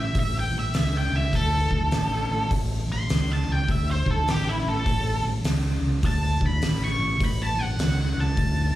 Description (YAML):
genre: blues rock power trio and southern rock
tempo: 102 BPM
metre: 4/4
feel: swing 64% on 8ths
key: A mixolydian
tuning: A4 = 440 Hz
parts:
  - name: octave-fuzz lead guitar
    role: melody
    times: 0.0-8.8 s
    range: E4 to C#6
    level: -28 LUFS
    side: equal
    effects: wah, distortion, plate reverb, slapback echo
  - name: fingered electric bass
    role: bass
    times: 0.0-8.7 s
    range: A1 to D2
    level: -25 LUFS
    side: equal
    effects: none
  - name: oversized low-tuned drum kit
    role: drums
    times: 0.1-8.6 s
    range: hi-hat, kick drum, snare drum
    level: -27 LUFS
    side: equal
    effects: none
room: little or no reverb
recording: live gig heard through the venue's PA, club reverb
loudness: -22 LUFS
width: side -14 dB against mid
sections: 0.0-8.8 A section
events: lead electric guitar solo 0.0-8.8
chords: 0.0 A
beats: | 0.16 0.74 1.33 1.92 | 2.51 3.10 3.69 4.27 | 4.86 5.45 6.04 6.62 | 7.21 7.79 8.38